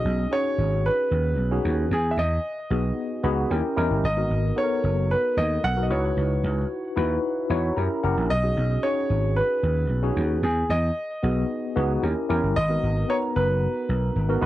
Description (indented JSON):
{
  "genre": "pop",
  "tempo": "113 BPM",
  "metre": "4/4",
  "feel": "straight",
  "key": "unclear",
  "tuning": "A4 = 440 Hz",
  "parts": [
    { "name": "clear grand piano", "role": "melody", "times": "0.0-14.5 s", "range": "G#4 to F#5", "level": "-27 LUFS", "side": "equal", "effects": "none" },
    { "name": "tine electric piano", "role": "accompaniment", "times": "0.0-14.5 s", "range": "B3 to B5", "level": "-26 LUFS", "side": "left 2 dB", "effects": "medium stereo tremolo, analog chorus" },
    { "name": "vintage slap bass", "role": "bass", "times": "0.0-14.5 s", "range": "F#1 to F#2", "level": "-24 LUFS", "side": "equal", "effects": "none" }
  ],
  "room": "light reverb",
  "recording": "none",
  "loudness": "-22 LUFS",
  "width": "side -14 dB against mid",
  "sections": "0.0-14.5 A section",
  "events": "tine electric piano fill 3.0-4.0, 7.5-8.3",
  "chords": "0.0 B69; 1.9 Emaj7; 3.5 D#7b9; 4.0 G#m9; 5.9 C#m11; 7.8 F#7b9; 8.3 B69; 10.4 Emaj7; 12.0 D#7b9; 12.6 G#m9"
}